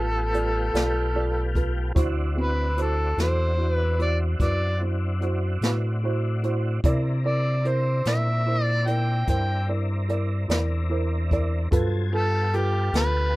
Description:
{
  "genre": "slow blues",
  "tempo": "49 BPM (dotted quarters)",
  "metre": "12/8",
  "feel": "straight",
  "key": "unclear",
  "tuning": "A4 = 440 Hz",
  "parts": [
    { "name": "overdriven harmonica", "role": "melody", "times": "0.0-13.4 s", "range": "G4 to G5", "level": "-26 LUFS", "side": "equal", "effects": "none" },
    { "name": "dark upright piano", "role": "accompaniment", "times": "0.0-13.4 s", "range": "C4 to D5", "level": "-30 LUFS", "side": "right 2 dB", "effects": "none" },
    { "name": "tonewheel organ", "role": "sustained chords", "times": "0.0-13.4 s", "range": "F#3 to Ab5", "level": "-34 LUFS", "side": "left 1 dB", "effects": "slow rotary speaker, chorus vibrato" },
    { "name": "sub bass with octave", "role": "bass", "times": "0.0-13.4 s", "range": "A1 to C3", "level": "-24 LUFS", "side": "equal", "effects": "none" },
    { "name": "jazz brush drum kit", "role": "drums", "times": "0.3-13.1 s", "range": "hi-hat, kick drum, snare drum", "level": "-24 LUFS", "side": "equal", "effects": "none" }
  ],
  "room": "little or no reverb",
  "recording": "rough home demo mix",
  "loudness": "-22 LUFS",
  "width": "side -19 dB against mid",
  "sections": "0.0-13.4 A section",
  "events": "none",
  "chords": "0.0 G9; 2.0 D9; 6.8 C9; 11.7 G9"
}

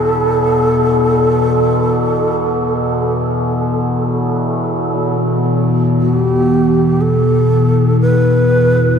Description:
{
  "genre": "dark ambient drone",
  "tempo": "free time",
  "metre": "none",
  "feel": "none",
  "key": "unclear",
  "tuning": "A4 = 435 Hz",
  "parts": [
    { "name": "breathy mellow long shakuhachi", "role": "melody", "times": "0.0-9.0 s", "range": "G4 to B4", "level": "-17 LUFS", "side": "right 1 dB", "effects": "ping-pong delay" },
    { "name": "overtone-sweeping drone", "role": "drone", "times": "0.0-9.0 s", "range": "E2 to B2", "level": "-14 LUFS", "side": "left 1 dB", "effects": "chorus, built-in reverb" },
    { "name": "wind-like tuned noise texture", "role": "texture", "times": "0.0-5.0 s", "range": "A4", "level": "-24 LUFS", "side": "right 2 dB", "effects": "built-in reverb" }
  ],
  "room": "wet huge ambient reverb, RT60 7.4 s",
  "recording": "dark, warm production",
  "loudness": "-12 LUFS",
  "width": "side -7 dB against mid",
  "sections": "0.0-5.0 A section; 5.0-9.0 B section",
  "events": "none",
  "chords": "0.0 A5"
}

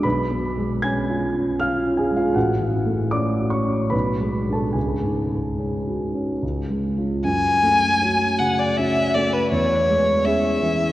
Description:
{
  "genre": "classical, romantic duo for violin and grand piano",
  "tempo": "71-82 BPM",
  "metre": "3/4",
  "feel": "rubato",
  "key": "F# minor",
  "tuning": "A4 = 439 Hz",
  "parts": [
    { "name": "dark concert grand piano", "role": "accompaniment", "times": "0.0-10.9 s", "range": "A1 to G#6", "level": "-21 LUFS", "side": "equal", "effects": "none" },
    { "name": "rich violin", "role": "melody", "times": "7.2-10.9 s", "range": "B4 to G#5", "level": "-18 LUFS", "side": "left 1 dB", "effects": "none" }
  ],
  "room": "wet cathedral reverb, RT60 4.3 s",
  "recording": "worn, warbling old tape, cassette tape, warbly pitch drift",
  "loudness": "-19 LUFS",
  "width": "side -15 dB against mid",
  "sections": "0.0-7.2 A section; 7.2-10.9 B section",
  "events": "none",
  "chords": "0.0 C#7/B; 2.4 F#m/A; 3.9 G#dim/B; 4.8 C#sus4; 6.4 C#; 7.2 F#m; 9.5 C#m/E"
}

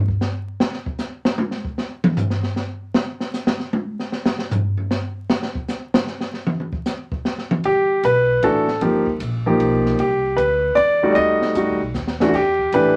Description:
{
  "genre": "jazz piano trio",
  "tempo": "154 BPM",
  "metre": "3/4",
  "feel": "swing 66% on 8ths",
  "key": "unclear",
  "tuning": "A4 = 438 Hz",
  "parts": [
    { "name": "open jazz drum kit", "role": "drums", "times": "0.1-12.8 s", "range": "crash cymbal, hi-hat, kick drum, ride cymbal, snare drum, toms", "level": "-24 LUFS", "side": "equal", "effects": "none" },
    { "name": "upright bass", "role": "bass", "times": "7.6-13.0 s", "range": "G1 to F#2", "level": "-30 LUFS", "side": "equal", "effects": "none" },
    { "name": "warm grand piano", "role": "melody", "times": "7.7-13.0 s", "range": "E3 to D#5", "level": "-18 LUFS", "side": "equal", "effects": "none" }
  ],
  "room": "moderate club reverb, RT60 0.5 s",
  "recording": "vinyl crackle",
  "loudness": "-20 LUFS",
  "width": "mono",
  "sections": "0.0-7.6 A section; 7.6-13.0 B section",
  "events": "drum solo 0.0-7.6; drum fill 11.9-12.3",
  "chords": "0.0 N.C.; 7.6 G; 8.8 G7alt; 10.0 Cmaj9; 11.2 B7b13 (rootless); 12.3 Em11"
}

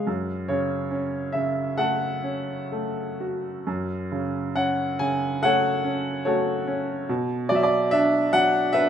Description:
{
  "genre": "classical, lyrical solo piano",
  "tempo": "61-74 BPM",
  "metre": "4/4",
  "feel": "rubato",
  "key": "F# minor",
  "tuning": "A4 = 440 Hz",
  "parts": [
    { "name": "clear upright piano", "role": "solo", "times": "0.0-8.9 s", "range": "F#2 to G#5", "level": "-22 LUFS", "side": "equal", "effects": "none" }
  ],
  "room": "moderate recital hall reverb, RT60 1.4 s",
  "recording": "none",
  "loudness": "-22 LUFS",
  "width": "side -9 dB against mid",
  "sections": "0.0-3.7 A section; 3.7-8.9 A section",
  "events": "none",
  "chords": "0.1 F#m; 7.1 Bm"
}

